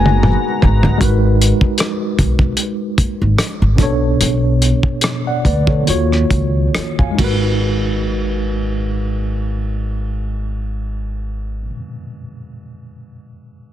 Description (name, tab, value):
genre	R&B, neo-soul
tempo	66-77 BPM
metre	4/4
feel	swing 55% on 16ths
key	G# minor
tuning	A4 = 441 Hz
part	gliding portamento lead	melody	0.0-0.6 s	G#5	-22 LUFS	left 6 dB	chorus, phaser, tape echo
part	tine electric piano	accompaniment	0.0-13.7 s	B2 to G#5	-20 LUFS	right 1 dB	overdrive, fast stereo tremolo
part	tonewheel organ	sustained chords	0.0-1.0 s	G#3 to A#5	-24 LUFS	left 2 dB	chorus vibrato, lush chorus
part	upright bass	bass	0.0-11.7 s	F#1 to G#2	-17 LUFS	equal	none
part	cloth-damped thuddy drum kit	drums	0.1-7.4 s	hi-hat, kick drum, ride cymbal, rim click, toms	-18 LUFS	equal	none
room	small room ambience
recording	dense, heavily limited modern master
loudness	-14 LUFS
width	side -12 dB against mid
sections	0.0-1.0 A section; 1.0-7.6 B section; 7.6-11.3 C section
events	drum fill 0.0-1.0; slowing down 1.0-7.6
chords	0.0 G#m9; 3.8 Bm9; 5.9 D#m9; 7.2 G#m9